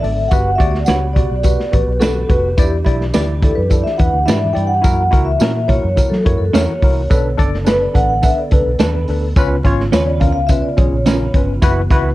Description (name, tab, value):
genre	uptempo 1960s-style soul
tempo	106 BPM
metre	4/4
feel	straight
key	B minor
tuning	A4 = 439 Hz
part	vibraphone with soft mallets	melody	0.0-11.3 s	G4 to G5	-19 LUFS	equal	plate reverb
part	tine electric piano	accompaniment	0.0-12.1 s	C#4 to D5	-22 LUFS	left 2 dB	overdrive, fast stereo tremolo, plate reverb
part	percussive tonewheel organ	sustained chords	0.0-12.1 s	C#3 to A4	-28 LUFS	right 1 dB	fast rotary speaker
part	vintage muted fingered electric bass	bass	0.0-12.1 s	E#1 to F#3	-19 LUFS	equal	none
part	crunchy breakbeat drum kit	drums	0.0-12.0 s	hi-hat, kick drum, snare drum	-15 LUFS	equal	vintage 12-bit sampler grit
part	tambourine	percussion	0.3-11.8 s	none	-32 LUFS	right 5 dB	none
part	congas	percussion	0.6-12.0 s	none	-29 LUFS	right 1 dB	none
part	clean electric guitar	stabs	0.9-11.2 s	C#4 to B4	-24 LUFS	right 6 dB	spring reverb, tape echo, plate reverb
room	light reverb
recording	cassette tape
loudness	-12 LUFS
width	side -16 dB against mid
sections	0.0-12.1 A section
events	vibraphone solo 0.0-12.1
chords	0.3 Gmaj7; 2.6 Em7; 4.8 F#7; 7.1 Bm7; 9.4 C#7; 11.6 F#7sus4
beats	| 0.32 0.89 1.45 2.02 | 2.59 3.15 3.72 4.28 | 4.85 5.41 5.98 6.54 | 7.11 7.67 8.24 8.80 | 9.37 9.93 10.50 11.06 | 11.62